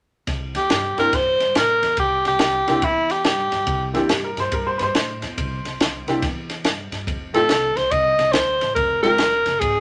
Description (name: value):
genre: electric blues shuffle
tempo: 141 BPM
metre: 4/4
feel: swing 64% on 8ths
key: C mixolydian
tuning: A4 = 440 Hz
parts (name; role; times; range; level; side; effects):
- upright bass; bass; 0.3-9.8 s; F1 to A2; -34 LUFS; equal; none
- compact cocktail drum kit; drums; 0.3-9.7 s; kick drum, ride cymbal, snare drum; -26 LUFS; equal; none
- breathy tenor saxophone; melody; 0.6-3.9, 7.3-9.8 s; E4 to Eb5; -20 LUFS; equal; none
- honky-tonk upright piano; accompaniment; 1.0-9.2 s; Ab3 to G4; -26 LUFS; equal; none
- clear upright piano; second line; 4.0-6.1 s; G4 to C5; -28 LUFS; equal; none
room: moderate small room reverb, RT60 0.5 s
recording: tape saturation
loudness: -20 LUFS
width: mono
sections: 0.3-9.8 A section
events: none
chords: 0.3 C; 7.1 F7; 8.8 Fm7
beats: | 0.27 0.70 1.12 1.55 | 1.98 2.40 2.83 3.25 | 3.68 4.10 4.53 4.95 | 5.38 5.80 6.22 6.65 | 7.07 7.50 7.92 8.34 | 8.77 9.19 9.62